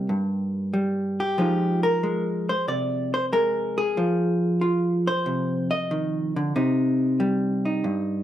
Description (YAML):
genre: solo jazz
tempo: 93 BPM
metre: 4/4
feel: swing 69% on 8ths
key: unclear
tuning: A4 = 440 Hz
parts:
  - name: vintage hollow-body jazz guitar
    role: solo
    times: 0.0-8.2 s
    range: G2 to Eb5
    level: -22 LUFS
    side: equal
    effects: none
room: moderate studio reverb, RT60 0.8 s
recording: none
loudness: -22 LUFS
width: side -11 dB against mid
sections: 0.0-8.2 A section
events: none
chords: 0.0 Cm7 (rootless); 1.4 Fm7; 6.5 Cm